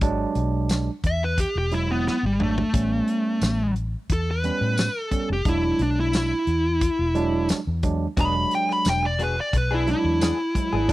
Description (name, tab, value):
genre	straight-eighth soul blues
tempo	88 BPM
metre	4/4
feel	straight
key	E mixolydian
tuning	A4 = 441 Hz
part	overdriven tine electric piano	accompaniment	0.0-10.9 s	F#3 to E4	-27 LUFS	right 5 dB	none
part	vintage muted fingered electric bass	bass	0.0-10.9 s	E1 to A2	-25 LUFS	left 1 dB	none
part	warm soul drum kit	drums	0.0-10.9 s	hi-hat, kick drum, snare drum, tambourine, toms	-25 LUFS	left 1 dB	none
part	dark smooth lead guitar	melody	1.1-10.9 s	G3 to B5	-24 LUFS	equal	overdrive
part	direct-recorded clean electric guitar	stabs	8.2-10.9 s	F#3 to G#4	-32 LUFS	left 4 dB	lush chorus
room	small room ambience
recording	dry, close 1970s-style studio recording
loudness	-21 LUFS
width	side -17 dB against mid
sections	0.0-10.9 A section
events	lead electric guitar solo 0.0-10.9; drum fill 2.1-2.7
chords	0.0 E9; 2.7 A9; 5.5 E9